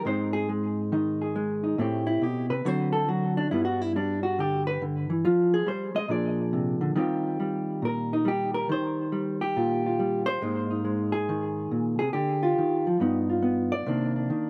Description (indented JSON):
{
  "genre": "solo jazz",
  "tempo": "139 BPM",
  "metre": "4/4",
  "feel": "swing 66% on 8ths",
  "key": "unclear",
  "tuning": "A4 = 442 Hz",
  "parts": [
    { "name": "hollow-body jazz guitar", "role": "solo", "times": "0.0-14.5 s", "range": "G2 to Eb5", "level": "-27 LUFS", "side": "equal", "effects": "slapback echo" }
  ],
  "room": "light reverb",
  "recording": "recorded outdoors, with no room sound",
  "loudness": "-27 LUFS",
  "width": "mono",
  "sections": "0.0-10.4 A section; 10.4-14.5 B section",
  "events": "hollow-body jazz guitar solo 0.0-10.4",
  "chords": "0.1 Ab; 1.8 Am7; 2.6 D7; 3.5 G; 5.2 Fm; 6.1 Bb7; 7.0 Eb69; 10.4 Abadd9; 12.1 Dmadd11; 13.0 Gaug7; 13.9 Cm9"
}